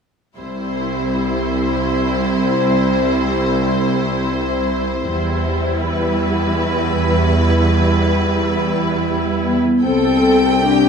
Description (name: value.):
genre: cinematic.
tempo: 77 BPM.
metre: 3/4.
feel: rubato.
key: C major.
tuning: A4 = 440 Hz.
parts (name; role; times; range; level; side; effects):
rich studio violin section; melody; 0.4-10.9 s; B4 to G5; -22 LUFS; left 4 dB; none.
rich studio viola section; accompaniment; 0.4-10.9 s; G3 to A4; -20 LUFS; right 2 dB; none.
rich studio cello section; bass; 0.4-10.9 s; C2 to E2; -19 LUFS; right 1 dB; none.
dark French horn section; sustained chords; 9.4-10.9 s; B3 to D4; -15 LUFS; left 4 dB; none.
room: moderate scoring stage reverb, RT60 2.0 s.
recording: none.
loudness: -15 LUFS.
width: side -6 dB against mid.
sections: 0.4-9.8 A section; 9.8-10.9 B section.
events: none.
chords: 0.4 C; 5.1 Em; 9.8 C5.